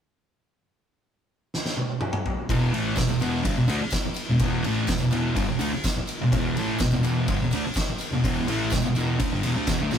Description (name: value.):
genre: garage rock duo or trio.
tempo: 125 BPM.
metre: 4/4.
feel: straight.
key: unclear.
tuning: A4 = 439 Hz.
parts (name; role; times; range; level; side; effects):
oversized low-tuned drum kit; drums; 1.5-10.0 s; kick drum, ride cymbal, snare drum, toms; -27 LUFS; equal; none.
fuzz guitar; riff; 2.5-10.0 s; E2 to A3; -23 LUFS; equal; distortion.
hollow-body short-scale picked electric bass; bass; 2.5-10.0 s; E1 to D2; -34 LUFS; equal; none.
tambourine; percussion; 2.7-10.0 s; none; -40 LUFS; right 2 dB; none.
room: light reverb.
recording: rough rehearsal-room recording, tube saturation.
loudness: -22 LUFS.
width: side -8 dB against mid.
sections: 0.6-2.5 A section; 2.5-10.0 B section.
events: drum fill 1.5-2.5.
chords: 0.6 N.C.; 2.5 E5.